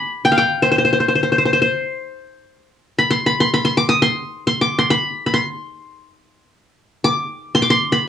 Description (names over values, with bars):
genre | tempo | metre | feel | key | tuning
arabic | free time | none | none | C maqam nahawand | A4 = 441 Hz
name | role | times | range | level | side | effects
qanun | solo | 0.0-8.1 s | C5 to Eb6 | -15 LUFS | left 1 dB | none
room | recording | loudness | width
moderate small room ambience, RT60 0.5 s | home recording on cassette, small room reverb | -15 LUFS | side -9 dB against mid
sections
0.0-2.7 A section; 2.7-8.1 A section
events
none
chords
none